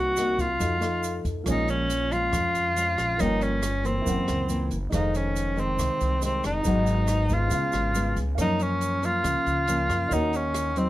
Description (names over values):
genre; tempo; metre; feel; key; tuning
bossa nova; 139 BPM; 4/4; straight; Bb minor; A4 = 440 Hz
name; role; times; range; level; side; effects
breathy tenor saxophone; melody; 0.0-10.9 s; C4 to Gb4; -26 LUFS; equal; none
nylon-string guitar; accompaniment; 0.0-10.9 s; F2 to Gb4; -29 LUFS; left 1 dB; none
upright bass; bass; 0.0-10.9 s; F1 to Gb2; -29 LUFS; equal; none
open jazz drum kit; drums; 0.2-10.9 s; hi-hat, kick drum, rim click; -34 LUFS; equal; none
tube shaker; percussion; 0.2-10.9 s; none; -42 LUFS; right 9 dB; none
warm grand piano; accompaniment; 1.4-10.9 s; Db4 to Bb5; -36 LUFS; right 3 dB; none
room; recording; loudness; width
moderate studio reverb, RT60 0.6 s; none; -23 LUFS; side -15 dB against mid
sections
0.0-1.5 A section; 1.5-10.9 B section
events
none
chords
0.0 Cm7b5; 0.6 F7b9; 1.5 Bbm7; 3.2 Gm7b5; 4.1 Gb7#11; 4.9 Fm7; 6.7 Abm7; 7.5 Db7; 8.4 Gbmaj7; 10.1 Ebm7